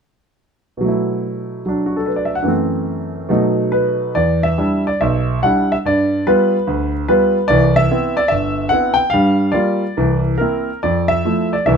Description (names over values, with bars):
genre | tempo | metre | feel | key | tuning
solo jazz | 144 BPM | 4/4 | swing 64% on 8ths, rubato | E minor | A4 = 440 Hz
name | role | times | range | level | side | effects
clear concert grand piano | solo | 0.8-11.8 s | G1 to G5 | -14 LUFS | equal | none
room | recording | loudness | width
moderate club reverb, RT60 0.8 s | minimal, uncompressed stereo recording | -14 LUFS | side -6 dB against mid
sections
0.8-4.2 A section; 4.2-11.8 B section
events
none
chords
0.8 B7sus4; 2.5 F#m7b5; 3.3 B7; 4.2 Em7; 5.9 G7; 7.5 Cmaj7; 9.1 Gm7; 10.0 C7; 10.8 Fmaj7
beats
| 0.83 1.25 1.67 2.07 | 2.48 2.89 3.30 3.73 | 4.16 4.59 5.02 5.45 | 5.87 6.28 6.69 7.10 | 7.51 7.91 8.32 8.73 | 9.14 9.55 9.97 10.39 | 10.82 11.25 11.67